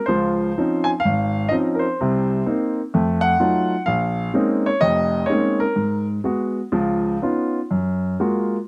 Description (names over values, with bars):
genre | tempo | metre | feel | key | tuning
solo jazz | 126 BPM | 4/4 | swing 68% on 8ths, rubato | Db major | A4 = 440 Hz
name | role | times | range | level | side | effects
warm grand piano | solo | 0.0-8.6 s | F1 to Ab5 | -21 LUFS | equal | none
room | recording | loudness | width
little or no reverb | recorded outdoors, with no room sound | -21 LUFS | mono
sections
0.1-8.7 A section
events
none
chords
0.1 Dbmaj9; 2.0 Cm7; 2.9 F7b9; 3.9 Bbm11; 5.8 Abm7; 6.7 Db9; 7.7 Gbmaj9